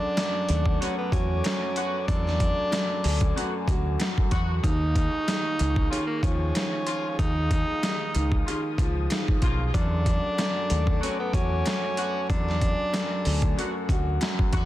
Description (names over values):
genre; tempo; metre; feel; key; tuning
hip hop, boom-bap hip-hop; 94 BPM; 4/4; swing 55% on 16ths; unclear; A4 = 440 Hz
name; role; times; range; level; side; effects
clear tenor saxophone; melody; 0.0-13.7 s; Bb3 to Eb4; -30 LUFS; equal; high-pass filter, low-pass filter, tape echo
clear upright piano; accompaniment; 0.0-14.7 s; Eb2 to F#4; -31 LUFS; left 1 dB; high-pass filter, low-pass filter
dark analog pad; sustained chords; 0.0-14.7 s; Ab4 to Eb6; -38 LUFS; equal; chorus, high-pass filter, low-pass filter
trip hop sampler-style drum kit; drums; 0.2-14.7 s; hi-hat, kick drum, snare drum; -27 LUFS; equal; none
finger snap; percussion; 0.2-14.4 s; none; -46 LUFS; left 5 dB; none
deep dub fingered electric bass; bass; 0.5-14.7 s; Cb2 to E2; -26 LUFS; equal; none
clear horn section; stabs; 0.8-14.7 s; Db3 to F#4; -36 LUFS; left 2 dB; high-pass filter, low-pass filter, tape echo
room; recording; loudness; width
light reverb, small room ambience; dense, heavily limited modern master, vinyl crackle; -23 LUFS; side -14 dB against mid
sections
0.0-14.7 A section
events
none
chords
0.0 E9sus4; 4.6 Eb9sus4; 9.7 E9sus4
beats
0.17 0.81 1.45 | 2.08 2.72 3.36 4.00 | 4.64 5.28 5.91 6.55 | 7.19 7.83 8.47 9.10 | 9.74 10.38 11.02 11.66 | 12.30 12.93 13.57 14.21